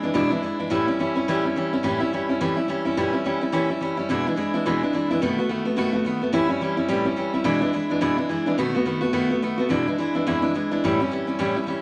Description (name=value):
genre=rock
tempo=214 BPM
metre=4/4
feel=swing 60% on 8ths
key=unclear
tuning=A4 = 440 Hz
part: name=picked steel-string acoustic guitar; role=solo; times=0.0-11.8 s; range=E2 to F#4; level=-23 LUFS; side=equal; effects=none
room=moderate large studio reverb, RT60 0.9 s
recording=vinyl crackle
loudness=-23 LUFS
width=mono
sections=0.0-9.7 A section; 9.7-11.8 A section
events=none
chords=0.0 E7; 0.7 A7; 3.0 A#dim7; 4.1 E7; 5.2 B7; 6.3 A7; 7.5 E7; 8.6 B7; 9.7 E7; 10.8 A7